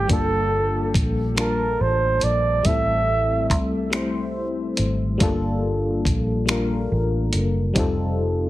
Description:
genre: slow six-eight R&B.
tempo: 47 BPM (dotted quarters).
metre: 6/8.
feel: straight.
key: G dorian.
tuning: A4 = 439 Hz.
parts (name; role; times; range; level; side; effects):
breathy flugelhorn; melody; 0.0-3.6 s; A4 to E5; -23 LUFS; right 3 dB; plate reverb, tape echo.
FM electric piano with tremolo; accompaniment; 0.0-8.5 s; G3 to A5; -24 LUFS; left 2 dB; plate reverb.
vintage muted fingered electric bass; bass; 0.0-8.5 s; F1 to C2; -24 LUFS; equal; none.
dusty soul sampler-style drum kit; drums; 0.1-8.0 s; finger snaps, hi-hat, kick drum; -23 LUFS; equal; none.
room: moderate studio ambience, RT60 0.5 s.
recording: heavily compressed radio sound, multiband compression.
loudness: -19 LUFS.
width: side -16 dB against mid.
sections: 0.0-8.5 A section.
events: none.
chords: 0.1 Gm9; 2.7 Am7; 5.2 Gm9; 7.8 F9.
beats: | 0.10 1.37 | 2.65 3.93 | 5.20 6.48 | 7.76.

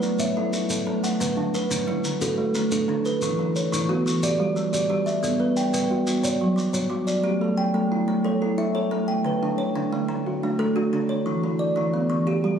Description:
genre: southern african traditional, mbira-style interlocking cycle.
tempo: 119 BPM (dotted quarters).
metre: 12/8.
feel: straight.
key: A mixolydian.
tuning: A4 = 440 Hz.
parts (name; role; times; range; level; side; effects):
kalimba; arpeggios; 0.0-12.6 s; D3 to G5; -23 LUFS; equal; none.
kalimba; arpeggios; 0.0-12.6 s; D3 to D5; -27 LUFS; right 4 dB; none.
shekere; percussion; 0.0-7.2 s; none; -32 LUFS; equal; none.
room: wet studio reverb, RT60 0.5 s.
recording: recorded on a phone in the room, club reverb, compression.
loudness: -21 LUFS.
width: side -8 dB against mid.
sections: 0.0-7.2 A section; 7.2-12.6 B section.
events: none.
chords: 0.0 A; 1.2 D; 3.2 E5; 4.2 G5; 5.2 B5; 6.2 F#5; 7.2 A; 9.3 D; 11.3 E5.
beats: 0.20 0.70 | 1.21 1.71 2.21 2.72 | 3.22 3.72 4.23 4.73 | 5.23 5.74 6.24 6.74 | 7.25 7.75 8.25 8.75 | 9.26 9.76 10.26 10.76 | 11.27 11.77 12.27.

